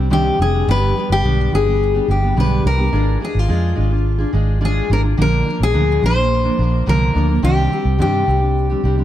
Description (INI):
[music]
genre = acoustic pop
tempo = 107 BPM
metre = 4/4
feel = straight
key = unclear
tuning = A4 = 439 Hz
[part]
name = fingerpicked steel-string acoustic guitar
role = accompaniment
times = 0.0-9.0 s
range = G2 to Bb4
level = -20 LUFS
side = right 1 dB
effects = none
[part]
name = vintage muted fingered electric bass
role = bass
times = 0.0-9.0 s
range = F1 to G2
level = -17 LUFS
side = equal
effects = none
[part]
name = fingerpicked steel-string acoustic guitar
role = melody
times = 0.1-9.0 s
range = F4 to C5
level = -20 LUFS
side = left 3 dB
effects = ping-pong delay
[sound]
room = studio reverb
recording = dark, warm production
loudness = -14 LUFS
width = side -12 dB against mid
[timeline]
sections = 0.0-9.0 A section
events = none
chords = 0.0 Cmadd9; 0.7 G; 2.9 Ddim/Ab; 5.2 Bb; 7.4 Cmadd9